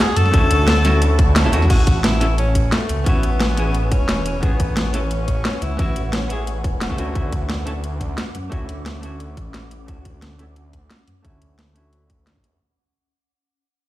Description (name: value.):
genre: liquid drum and bass.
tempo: 176 BPM.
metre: 4/4.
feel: swing 53% on 16ths.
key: unclear.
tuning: A4 = 440 Hz.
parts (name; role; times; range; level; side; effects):
warm tenor saxophone; melody; 0.0-6.6 s; A3 to A4; -24 LUFS; left 1 dB; tape echo.
ethereal airy pad; sustained chords; 0.0-12.6 s; C#4 to D6; -31 LUFS; left 1 dB; ensemble chorus, built-in reverb.
swelling detuned saw bass; bass; 0.2-12.6 s; E1 to F#2; -20 LUFS; equal; none.
drum and bass drum kit; drums; 0.2-12.5 s; crash cymbal, hi-hat, snare drum; -22 LUFS; equal; overdrive.
archtop guitar, miked and amplified; accompaniment; 0.3-12.6 s; A3 to A4; -26 LUFS; equal; low-pass filter, digital delay.
electronic kick drum; drums; 0.3-12.4 s; none; -18 LUFS; equal; overdrive.
room: digital ambience.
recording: played on a big sound system in a bare room, large studio reverb.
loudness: -16 LUFS.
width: side -15 dB against mid.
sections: 0.0-1.7 A section; 1.7-12.6 B section.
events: drop 0.0-1.7; kick drops out 1.4-1.7; fade-out 1.7-12.6; filter sweep on hollow-body jazz guitar 1.7-12.6.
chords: 0.0 Dmaj7; 1.7 Amaj9; 7.0 Dmaj7.